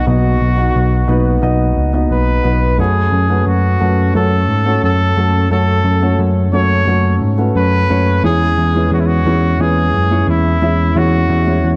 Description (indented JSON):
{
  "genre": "piano-driven pop",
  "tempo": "88 BPM",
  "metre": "4/4",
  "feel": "straight",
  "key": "unclear",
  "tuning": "A4 = 439 Hz",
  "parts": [
    { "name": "clear trumpet", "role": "melody", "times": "0.0-11.7 s", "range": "E4 to C#5", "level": "-21 LUFS", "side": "equal", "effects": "none" },
    { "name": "dark upright piano", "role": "accompaniment", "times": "0.0-11.8 s", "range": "B2 to F#5", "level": "-20 LUFS", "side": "equal", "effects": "none" },
    { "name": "barky tine electric piano", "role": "bass", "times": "0.1-11.8 s", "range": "B1 to G#2", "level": "-16 LUFS", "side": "equal", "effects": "none" }
  ],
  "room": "light reverb",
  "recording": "dark, warm production",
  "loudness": "-14 LUFS",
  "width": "mono",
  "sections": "0.0-11.8 A section",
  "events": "none",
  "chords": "0.0 B; 2.8 F#m; 8.2 C#m/E"
}